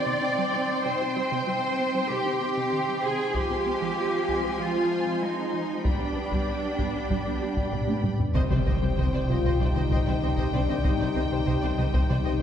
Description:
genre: cinematic, hybrid orchestral and electronic film score.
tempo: 96 BPM.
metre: 4/4.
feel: straight.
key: C minor.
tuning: A4 = 438 Hz.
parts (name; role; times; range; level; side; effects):
warm symphonic violin section; second line; 0.0-12.3 s; C5 to C6; -35 LUFS; left 1 dB; none.
warm symphonic viola section; accompaniment; 0.0-12.3 s; F3 to C5; -33 LUFS; right 1 dB; none.
brassy analog pad; sustained chords; 0.0-12.4 s; Eb3 to G5; -34 LUFS; equal; chorus, phaser.
clear symphonic cello section; bass; 0.0-12.3 s; C3 to D5; -30 LUFS; right 1 dB; none.
resonant blip pluck; arpeggios; 0.1-12.3 s; C3 to G4; -35 LUFS; right 2 dB; chorus, phaser, digital delay.
taiko ensemble; drums; 3.3-12.4 s; none; -29 LUFS; equal; none.
warm symphonic double bass section; bass; 8.3-12.4 s; C2; -32 LUFS; right 1 dB; none.
impact; sound effects; 8.3-10.8 s; none; -32 LUFS; equal; none.
rich symphonic violin section; melody; 8.4-12.4 s; G5; -38 LUFS; left 4 dB; none.
mellow French horn section; sustained chords; 8.4-12.4 s; C4 to F4; -30 LUFS; left 5 dB; none.
round analog bass; riff; 8.4-12.3 s; C2 to C3; -30 LUFS; left 2 dB; none.
warm sub bass; bass; 8.4-12.4 s; C2; -32 LUFS; equal; none.
room: wet scoring stage reverb, RT60 1.7 s.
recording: heard from further back in the room.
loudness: -24 LUFS.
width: side -9 dB against mid.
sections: 0.0-8.3 A section; 8.3-12.4 B section.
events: drum fill 7.7-8.3; impact 8.3-10.8.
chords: 0.0 Cm; 3.3 Fm; 5.8 G; 8.3 Cm.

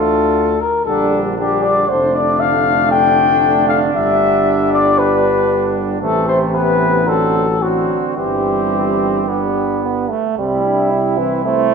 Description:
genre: classical, brass quintet.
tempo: 106-118 BPM.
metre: 4/4.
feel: rubato.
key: C major.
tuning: A4 = 440 Hz.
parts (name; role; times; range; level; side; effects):
mellow cornet; melody; 0.0-11.7 s; F#4 to G5; -16 LUFS; left 5 dB; none.
clear trumpet; second line; 0.0-11.7 s; A3 to F4; -22 LUFS; right 7 dB; none.
brilliant trombone; accompaniment; 0.0-11.7 s; C3 to B3; -21 LUFS; right 5 dB; none.
clear French horn; accompaniment; 0.0-11.7 s; E3 to E4; -22 LUFS; equal; none.
mellow bass trombone; bass; 0.0-11.7 s; F1 to D2; -22 LUFS; right 1 dB; none.
room: wet recital hall reverb, RT60 1.6 s.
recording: minimal, uncompressed stereo recording.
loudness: -13 LUFS.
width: side -5 dB against mid.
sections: 0.0-10.4 A section; 10.4-11.7 B section.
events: none.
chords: 0.0 Dm; 0.9 Gm/Bb; 1.9 Dm/F; 3.9 G; 6.0 Am; 7.1 D7/A; 8.2 C/G; 9.3 G; 10.4 C.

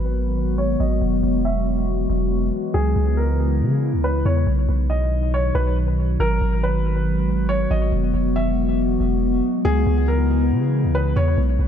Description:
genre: hip hop.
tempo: 139 BPM.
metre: 4/4.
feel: half-time.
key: unclear.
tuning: A4 = 441 Hz.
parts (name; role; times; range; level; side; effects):
felt-muted upright piano; melody; 0.0-11.4 s; G#4 to E5; -27 LUFS; left 1 dB; low-pass filter, ping-pong delay.
warbly tape-like pad; sustained chords; 0.0-11.7 s; B2 to F#4; -22 LUFS; left 1 dB; chorus, built-in reverb, low-pass filter.
long sustained 808-style bass; bass; 0.0-11.7 s; E1 to C#3; -20 LUFS; equal; none.
room: light reverb, digital ambience.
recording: none.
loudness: -18 LUFS.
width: side -8 dB against mid.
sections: 0.0-11.7 A section.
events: filter sweep 0.0-11.7.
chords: 0.0 G#m7; 1.0 Eadd9; 2.7 C#m7; 4.5 B; 6.2 G#m7; 7.9 Eadd9; 9.7 C#m7.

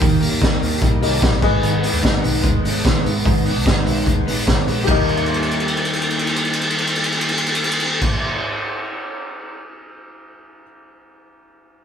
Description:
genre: jangly indie pop.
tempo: 148 BPM.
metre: 4/4.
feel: straight.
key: Eb major.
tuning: A4 = 440 Hz.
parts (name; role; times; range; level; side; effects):
picked twelve-string acoustic guitar; accompaniment; 0.0-8.4 s; Ab2 to Eb4; -25 LUFS; right 4 dB; none.
warm upright piano; accompaniment; 0.0-10.6 s; G4 to Eb5; -26 LUFS; left 7 dB; none.
direct-recorded clean electric guitar; arpeggios; 0.0-8.4 s; Ab2 to Eb4; -24 LUFS; left 3 dB; none.
vintage muted picked electric bass; bass; 0.0-8.1 s; Ab1 to Eb3; -25 LUFS; equal; none.
raw garage drum kit; drums; 0.0-9.6 s; crash cymbal, hi-hat, kick drum, ride cymbal, snare drum; -18 LUFS; equal; none.
glockenspiel with hard plastic mallets; second line; 4.9-8.1 s; G6; -31 LUFS; right 5 dB; none.
room: moderate studio reverb, RT60 0.9 s.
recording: band playing live in one room.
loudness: -16 LUFS.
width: side -8 dB against mid.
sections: 0.0-4.9 A section; 4.9-8.1 B section.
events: drum fill 5.1-8.0.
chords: 0.0 Eb; 1.4 Abm; 4.9 Eb.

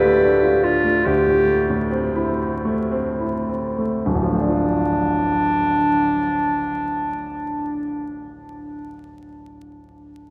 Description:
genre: classical, impressionist duo for clarinet and grand piano.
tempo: 33-54 BPM (dotted quarters).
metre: 6/8.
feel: rubato.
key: D minor.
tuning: A4 = 441 Hz.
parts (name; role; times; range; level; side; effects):
mellow clarinet; melody; 0.0-9.0 s; D4 to G4; -23 LUFS; equal; none.
warm grand piano; accompaniment; 0.0-10.3 s; D1 to F4; -25 LUFS; equal; none.
room: wet cathedral reverb, RT60 6.5 s.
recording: in a vast, echoing space, vinyl crackle.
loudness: -20 LUFS.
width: mono.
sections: 0.0-4.1 A section; 4.1-10.3 B section.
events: slowing down 0.0-4.1.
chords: 0.0 Dm; 1.1 Am7/D; 4.1 Dm.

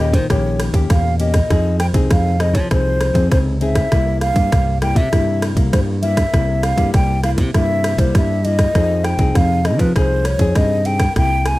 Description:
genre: samba and choro.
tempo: 99 BPM.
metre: 4/4.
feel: straight.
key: F minor.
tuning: A4 = 440 Hz.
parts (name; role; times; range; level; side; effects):
breathy mellow concert flute; melody; 0.0-11.6 s; B4 to Ab5; -20 LUFS; equal; none.
nylon-string guitar; accompaniment; 0.0-11.6 s; G2 to Ab4; -23 LUFS; left 4 dB; none.
modern bright fingered electric bass; bass; 0.0-11.5 s; Bb1 to F3; -18 LUFS; equal; none.
garage drum kit; drums; 0.1-11.6 s; kick drum, ride cymbal, rim click; -18 LUFS; equal; none.
room: little or no reverb.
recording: close, detailed microphones.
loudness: -14 LUFS.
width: side -18 dB against mid.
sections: 0.0-11.6 A section.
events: none.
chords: 0.0 Eb7; 1.5 Fm7; 3.9 C7; 8.8 Fm7.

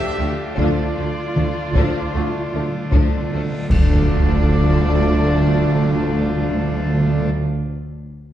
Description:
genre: cinematic, epic orchestral film score.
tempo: 77 BPM.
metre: 4/4.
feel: straight.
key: D minor.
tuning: A4 = 440 Hz.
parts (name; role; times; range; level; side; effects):
warm symphonic violin section; melody; 0.0-7.3 s; A3 to D4; -28 LUFS; left 7 dB; none.
warm symphonic violin section; second line; 0.0-7.3 s; F4 to A4; -33 LUFS; left 3 dB; none.
warm symphonic viola section; accompaniment; 0.0-7.3 s; D3 to A3; -30 LUFS; right 1 dB; none.
pipe organ, trumpet; sustained chords; 0.0-7.3 s; A3 to D5; -30 LUFS; left 1 dB; none.
clear trumpet section; stabs; 0.0-7.3 s; D5 to E5; -30 LUFS; equal; none.
warm symphonic cello section; bass; 0.0-7.3 s; D2 to G4; -26 LUFS; right 2 dB; none.
clear studio double bass section; bass; 0.2-7.3 s; D2; -24 LUFS; right 3 dB; none.
mellow tuba; bass; 0.2-7.3 s; D2; -25 LUFS; right 3 dB; none.
bright trombone section; sustained chords; 0.6-7.3 s; D3 to A3; -30 LUFS; right 4 dB; none.
warm French horn section; sustained chords; 0.6-7.3 s; D4 to F4; -28 LUFS; left 6 dB; none.
taiko ensemble; drums; 0.6-5.2 s; none; -20 LUFS; equal; none.
cymbal swell, clash cymbals and concert bass drum; percussion; 0.6-5.2 s; none; -24 LUFS; equal; none.
timpani; percussion; 0.6-7.3 s; D3; -24 LUFS; right 1 dB; none.
reverse cymbal and sub drop; sound effects; 4.1-7.3 s; none; -28 LUFS; left 1 dB; none.
room: moderate scoring stage reverb, RT60 1.5 s.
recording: dark, warm production.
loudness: -16 LUFS.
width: side -11 dB against mid.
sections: 0.0-3.7 A section; 3.7-6.8 B section.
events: timpani fill 0.6-3.7; reverse cymbal 3.5; band accent 3.7-4.5; impact 3.7-6.8.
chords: 0.0 Dm.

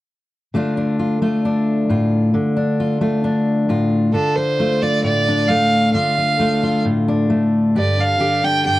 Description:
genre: indie folk with a building arrangement.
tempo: 133 BPM.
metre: 4/4.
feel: straight.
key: D minor.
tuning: A4 = 440 Hz.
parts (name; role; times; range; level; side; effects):
fingerpicked steel-string acoustic guitar; accompaniment; 0.5-8.8 s; G2 to G4; -16 LUFS; left 1 dB; none.
warm fiddle; melody; 4.1-8.8 s; A4 to G5; -18 LUFS; right 2 dB; none.
room: little or no reverb.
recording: dry, close 1970s-style studio recording.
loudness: -15 LUFS.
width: side -16 dB against mid.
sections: 0.5-4.2 A section; 4.2-8.8 B section.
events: none.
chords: 0.5 Dm; 7.8 G5.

